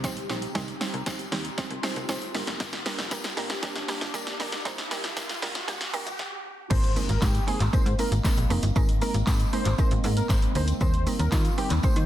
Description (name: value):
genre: dance-pop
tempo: 117 BPM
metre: 4/4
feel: straight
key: unclear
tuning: A4 = 442 Hz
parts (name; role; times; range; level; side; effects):
- mallet-like synth pluck; accompaniment; 0.0-12.0 s; G3 to C5; -33 LUFS; right 5 dB; chorus, sidechain pumping
- granular cloud pad; sustained chords; 0.0-12.1 s; C3 to G4; -37 LUFS; equal; built-in reverb, sidechain pumping
- slap-like FM bass; bass; 0.0-12.1 s; F1 to Eb3; -27 LUFS; equal; sidechain pumping
- punchy analog drum machine; drums; 0.0-12.1 s; crash cymbal, handclaps, hi-hat, kick drum, shaker, snare drum; -27 LUFS; equal; none
- tambourine; percussion; 0.0-12.0 s; none; -43 LUFS; left 5 dB; none
- riser and impact; sound effects; 0.5-8.8 s; none; -38 LUFS; equal; none
- octave-doubled lead; melody; 6.7-12.0 s; F4 to C5; -33 LUFS; equal; chorus, digital delay
room: digital ambience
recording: dense, heavily limited modern master, high-pass filter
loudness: -24 LUFS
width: side -13 dB against mid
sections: 0.0-6.7 A section; 6.7-12.1 B section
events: build-up 0.0-6.7; drum fill 0.0-6.2; riser 0.5-6.7; stop 6.2-6.7; drop 6.7-12.1; impact 6.7-8.8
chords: 0.0 Eb6; 2.3 Gm; 6.7 Abadd9; 10.8 Eb6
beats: 0.04 | 0.55 1.07 1.58 2.09 | 2.60 3.12 3.63 4.14 | 4.66 5.17 5.68 6.19 | 6.71 7.22 7.73 8.25 | 8.76 9.27 9.78 10.30 | 10.81 11.32 11.84